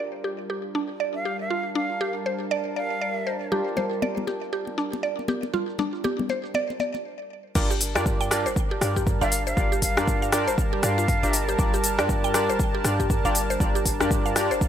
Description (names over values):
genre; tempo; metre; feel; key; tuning
afro house; 119 BPM; 4/4; swing 59% on 16ths; G minor; A4 = 440 Hz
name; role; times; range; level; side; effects
warm analog pad; sustained chords; 0.0-14.7 s; G3 to A5; -32 LUFS; right 1 dB; chorus, sidechain pumping
mallet-like synth pluck; arpeggios; 0.0-14.6 s; D4 to G5; -29 LUFS; right 1 dB; chorus, sidechain pumping, digital delay
warm analog keys; stabs; 0.0-14.5 s; D4 to D5; -30 LUFS; equal; chorus, sidechain pumping, low-pass filter, digital delay
afro-pop drum kit; drums; 0.2-14.7 s; crash cymbal, hi-hat, rim click, shaker; -28 LUFS; left 1 dB; low-pass filter on perc, low-pass filter on hats, low-pass filter on snare, low-pass filter on cymbals, low-pass filter on room
jazz flute; melody; 1.1-3.5, 9.2-11.5 s; F5; -30 LUFS; equal; digital delay
congas; percussion; 3.5-7.0 s; none; -30 LUFS; left 4 dB; none
warm 808-style bass; bass; 7.6-14.7 s; F1 to G2; -30 LUFS; equal; sidechain pumping
electronic kick drum; drums; 7.6-14.7 s; none; -25 LUFS; equal; none
room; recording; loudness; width
light reverb; none; -22 LUFS; side -9 dB against mid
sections
0.0-7.6 A section; 7.6-14.7 B section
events
stop 7.0-7.6; drop 7.6-14.7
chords
0.0 Gm7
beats
0.49 1.00 | 1.50 2.01 2.51 3.02 | 3.52 4.03 4.53 5.03 | 5.54 6.04 6.55 7.05 | 7.55 8.06 8.56 9.07 | 9.57 10.07 10.58 11.08 | 11.59 12.09 12.60 13.10 | 13.60 14.11 14.61